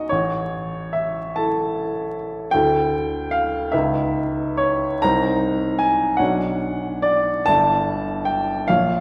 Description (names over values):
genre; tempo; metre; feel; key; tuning
classical, impressionist solo piano; 49 BPM (dotted quarters); 6/8; uneven beats, rubato; unclear; A4 = 439 Hz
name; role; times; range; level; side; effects
clear baby grand piano; solo; 0.0-9.0 s; G1 to Bb5; -21 LUFS; equal; none
room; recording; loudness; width
wet concert hall reverb, RT60 2.3 s; recorded in a church or concert hall, vinyl crackle; -21 LUFS; mono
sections
0.0-9.0 A section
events
none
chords
0.1 A; 2.5 Dsus2; 3.7 Dbm9; 5.0 Cm7; 6.2 Bmadd9; 7.5 G5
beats
| 0.08 1.36 | 2.53 3.73 | 5.03 6.20 | 7.49 8.68